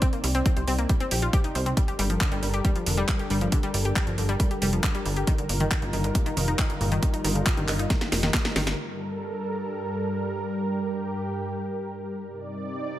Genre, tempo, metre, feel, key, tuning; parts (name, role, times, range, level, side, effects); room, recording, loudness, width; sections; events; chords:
uplifting trance; 137 BPM; 4/4; straight; G minor; A4 = 441 Hz
lush unison pad; sustained chords; 0.0-13.0 s; G2 to D5; -31 LUFS; right 1 dB; chorus, sidechain pumping
analog pluck; arpeggios; 0.0-8.7 s; Bb2 to C5; -30 LUFS; left 1 dB; chorus, sidechain pumping, tape echo
electronic kick drum; drums; 0.0-8.4 s; -24 LUFS; equal
house drum kit; drums; 0.0-8.8 s; handclaps, hi-hat, snare drum; -30 LUFS; right 1 dB; sidechain pumping on hats
plucky analog bass; bass; 0.2-8.7 s; F1 to C2; -27 LUFS; equal; sidechain pumping
light reverb; -23 LUFS; side -13 dB against mid
0.0-8.8 A section; 8.8-13.0 B section
filter sweep on analog synth pad 0.0-8.8; drum fill 7.9-8.8
0.0 Cmadd9; 1.8 Gmadd9; 5.3 Ebadd9; 8.8 Gmadd9; 12.3 Cmadd9